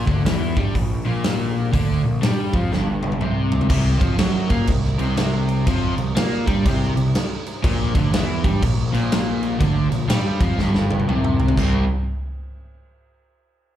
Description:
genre	blues rock power trio and southern rock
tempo	122 BPM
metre	4/4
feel	swing 63% on 8ths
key	C mixolydian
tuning	A4 = 442 Hz
part	crunchy overdriven guitar	riff	0.0-11.8 s	G2 to C4	-22 LUFS	equal	slapback echo
part	fuzz picked electric bass	bass	0.0-11.9 s	G1 to Bb2	-24 LUFS	equal	overdrive
part	big rock drum kit	drums	0.1-11.7 s	china cymbal, crash cymbal, hi-hat, kick drum, snare drum, toms	-22 LUFS	equal	none
room	light reverb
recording	live gig heard through the venue's PA, club reverb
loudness	-18 LUFS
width	side -11 dB against mid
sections	0.0-3.7 A section; 3.7-11.6 A section; 11.6-13.5 B section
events	drum fill 2.7-3.7, 10.6-11.6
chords	0.0 Bb5; 3.7 C5; 7.6 Bb5; 11.6 C5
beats	0.25 0.74 1.24 | 1.73 2.22 2.71 3.21 | 3.70 4.19 4.68 5.17 | 5.67 6.16 6.65 7.14 | 7.63 8.13 8.62 9.11 | 9.60 10.10 10.59 11.08 | 11.57

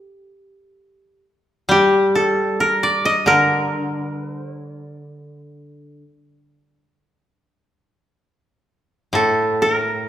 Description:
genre	japanese traditional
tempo	free time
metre	none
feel	none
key	D miyako bushi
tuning	A4 = 440 Hz
part	koto	melody	0.0-10.1 s	G4 to Eb5	-16 LUFS	equal	none
part	koto	accompaniment	1.7-10.1 s	A2 to G3	-22 LUFS	left 1 dB	none
room	wet recital hall reverb, RT60 1.7 s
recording	recorded in a church or concert hall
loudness	-15 LUFS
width	side -11 dB against mid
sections	0.0-9.1 A section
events	none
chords	none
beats	free time

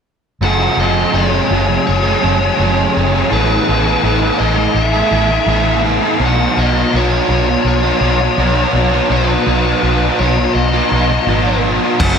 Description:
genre	rock, shoegaze and dream pop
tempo	83 BPM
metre	4/4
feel	straight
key	unclear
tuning	A4 = 440 Hz
part	biting lead guitar	melody	0.4-12.2 s	B4 to F#5	-20 LUFS	left 2 dB	overdrive, tape echo
part	crunchy overdriven guitar	riff	0.4-12.2 s	F#2 to A4	-17 LUFS	left 7 dB	ensemble chorus
part	overdriven semi-hollow guitar	riff	0.4-12.2 s	F#2 to A4	-16 LUFS	right 7 dB	reverse reverb
part	vintage muted fingered electric bass	bass	0.4-12.2 s	F#1 to B1	-17 LUFS	equal	none
part	loose indie drum kit	drums	12.0-12.2 s	crash cymbal, kick drum	-14 LUFS	equal	none
room	wet lush hall reverb, RT60 1.6 s, studio reverb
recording	dreamy mix soaked in reverb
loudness	-12 LUFS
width	side -6 dB against mid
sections	0.4-12.0 A section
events	none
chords	0.4 F#m; 3.3 Asus2; 6.2 B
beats	| 0.42 1.14 1.87 2.59 | 3.32 4.04 4.77 5.49 | 6.22 6.94 7.66 8.39 | 9.11 9.83 10.56 11.28 | 12.00

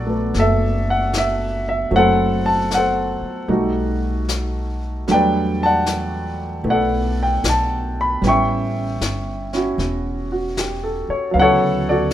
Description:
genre	jazz ballad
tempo	76 BPM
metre	4/4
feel	swing 66% on 8ths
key	unclear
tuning	A4 = 440 Hz
part	warm concert grand piano	accompaniment	0.0-12.1 s	C#3 to C#6	-18 LUFS	equal	none
part	upright bass	bass	0.0-12.1 s	E1 to E2	-24 LUFS	equal	none
part	vintage brush drum kit	drums	0.3-12.1 s	brushed snare drum, hi-hat, snare drum	-27 LUFS	left 4 dB	none
room	light reverb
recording	minimal, uncompressed stereo recording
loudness	-17 LUFS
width	side -12 dB against mid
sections	0.0-12.1 A section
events	none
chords	0.0 Bm7; 1.9 F#m7b5; 3.5 B7b13; 5.1 Em11; 8.2 A7; 11.3 Dmaj13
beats	0.34 1.13 | 1.91 2.70 3.48 4.28 | 5.08 5.87 6.66 7.45 | 8.23 9.01 9.79 10.57 | 11.35 12.12

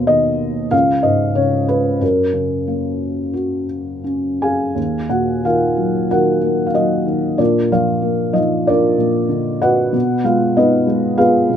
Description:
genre	classical, lyrical solo piano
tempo	82-97 BPM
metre	4/4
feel	rubato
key	F# major, Eb minor from 4.8 s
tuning	A4 = 440 Hz
part	felt-muted upright piano	solo	0.0-11.6 s	C#2 to G#5	-14 LUFS	equal	none
room	light reverb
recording	none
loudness	-14 LUFS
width	side -9 dB against mid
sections	0.0-4.8 A section; 4.8-11.6 B section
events	none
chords	0.0 B/D#; 0.7 C#5; 2.0 F#add9; 4.8 Ebmadd9; 7.4 Bb; 9.9 Abm/Cb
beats	0.09 0.72 1.36 | 2.01 2.68 3.36 4.07 | 4.77 5.44 6.10 6.75 | 7.40 8.05 8.68 9.32 | 9.95 10.58 11.20

